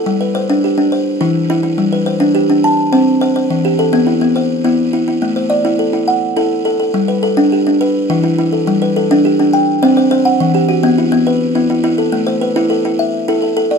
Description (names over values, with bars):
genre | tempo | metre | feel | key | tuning
southern african traditional | 139 BPM (dotted quarters) | 12/8 | straight | unclear | A4 = 441 Hz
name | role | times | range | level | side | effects
buzzing kalimba | solo | 0.0-13.8 s | E3 to A5 | -11 LUFS | equal | none
room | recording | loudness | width
moderate studio reverb, RT60 0.6 s | minimal, uncompressed stereo recording | -11 LUFS | side -5 dB against mid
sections
0.0-6.9 A section; 6.9-13.8 B section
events
none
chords
0.1 G; 0.9 Em; 1.8 G; 2.6 C5; 3.5 Em; 5.2 Am; 6.9 G; 7.8 Em; 8.7 G; 9.5 C5; 10.4 Em; 12.1 Am